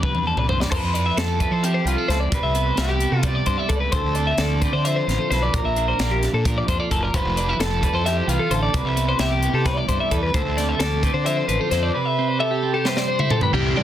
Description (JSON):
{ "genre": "math rock and midwest emo", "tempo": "262 BPM (eighths)", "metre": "7/8", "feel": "straight", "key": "C major", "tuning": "A4 = 437 Hz", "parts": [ { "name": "twelve-string electric guitar", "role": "accompaniment", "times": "0.0-13.8 s", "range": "G2 to C5", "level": "-28 LUFS", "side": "right 6 dB", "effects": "none" }, { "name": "twelve-string electric guitar", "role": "arpeggios", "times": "0.0-13.8 s", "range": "G4 to E5", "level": "-24 LUFS", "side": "left 4 dB", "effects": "plate reverb, digital delay" }, { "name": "fuzz fingered electric bass", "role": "bass", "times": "0.0-13.8 s", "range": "F1 to F3", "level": "-23 LUFS", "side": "equal", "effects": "overdrive" }, { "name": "crisp fusion drum kit", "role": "drums", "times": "0.0-13.5 s", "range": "crash cymbal, hi-hat, kick drum, snare drum, toms", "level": "-25 LUFS", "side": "equal", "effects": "none" }, { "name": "overdriven electric guitar", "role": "melody", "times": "0.7-13.3 s", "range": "F4 to E5", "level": "-26 LUFS", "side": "equal", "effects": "plate reverb" }, { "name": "overdriven electric guitar", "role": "riff", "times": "13.5-13.8 s", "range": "C3 to G4", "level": "-22 LUFS", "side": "right 1 dB", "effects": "none" } ], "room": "moderate small room ambience, RT60 0.5 s", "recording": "dense, heavily limited modern master", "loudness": "-18 LUFS", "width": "side -11 dB against mid", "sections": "0.7-13.5 A section", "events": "drum fill 0.0-0.7, 12.9-13.5", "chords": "0.0 Cmaj9; 0.7 Fmaj7; 2.3 Cmaj7; 3.9 Dm7; 5.5 Bbmaj7; 7.1 Fmaj7; 8.7 Cmaj7; 10.3 Dm7; 11.9 Cmaj7", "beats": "0.03 0.26 0.49 | 0.72 0.95 1.18 1.41 1.64 1.87 2.10 | 2.33 2.56 2.79 3.01 3.24 3.47 3.70 | 3.93 4.16 4.39 4.62 4.85 5.08 5.31 | 5.54 5.77 6.00 6.23 6.46 6.68 6.91 | 7.14 7.37 7.60 7.83 8.06 8.29 8.52 | 8.74 8.97 9.20 9.43 9.66 9.89 10.12 | 10.35 10.57 10.80 11.03 11.26 11.49 11.72 | 11.94 12.17 12.40 12.63 12.86 13.09 13.31 | 13.54 13.77" }